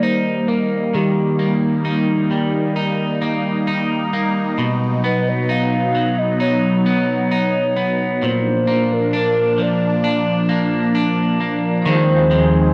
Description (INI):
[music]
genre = dream pop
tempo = 66 BPM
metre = 4/4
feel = straight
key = Eb major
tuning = A4 = 440 Hz
[part]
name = hollow clarinet-like synth lead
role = melody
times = 0.0-12.7 s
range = G4 to F5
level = -24 LUFS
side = equal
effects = chorus, analog delay
[part]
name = phased analog pad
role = sustained chords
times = 0.0-12.7 s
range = Eb2 to Ab4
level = -22 LUFS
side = equal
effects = phaser, chorus
[part]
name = electric guitar at the edge of break-up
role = arpeggios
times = 0.0-12.7 s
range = Bb2 to Eb4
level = -22 LUFS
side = equal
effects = subtle chorus, analog delay
[part]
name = electric guitar through a small old amp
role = accompaniment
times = 11.8-12.7 s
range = Eb3 to F4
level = -26 LUFS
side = equal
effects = tremolo, lush chorus
[part]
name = backwards swelling texture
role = texture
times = 12.6-12.7 s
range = Eb5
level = -59 LUFS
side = equal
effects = none
[sound]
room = moderate concert hall reverb, RT60 1.7 s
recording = dry, gritty hardware recording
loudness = -18 LUFS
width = mono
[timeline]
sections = 0.0-11.9 A section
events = none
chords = 0.0 Eb; 4.6 B; 8.2 Bb; 11.9 Fm7/Eb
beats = 0.04 | 0.94 1.85 2.76 3.67 | 4.58 5.49 6.40 7.31 | 8.22 9.13 10.04 10.94 | 11.85